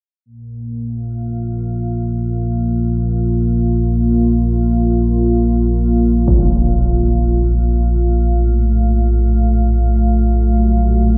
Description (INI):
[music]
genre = dark ambient drone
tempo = free time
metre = none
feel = none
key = unclear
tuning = A4 = 440 Hz
[part]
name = dark analog pad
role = sustained chords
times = 0.3-11.2 s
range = A3 to F5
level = -19 LUFS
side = equal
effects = chorus
[part]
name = deep rumbling drone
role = drone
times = 1.0-11.2 s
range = Bb1 to Bb2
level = -18 LUFS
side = equal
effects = built-in reverb, lush chorus
[part]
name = impact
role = percussion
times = 6.3-6.5 s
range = none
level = -23 LUFS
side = equal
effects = low-pass filter on sfx
[sound]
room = moderate cathedral reverb, RT60 6.2 s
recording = dark, warm production, nothing above 7.5 kHz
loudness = -16 LUFS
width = mono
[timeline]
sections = 0.3-11.2 A section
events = none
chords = 0.3 Bb5; 8.3 Gbm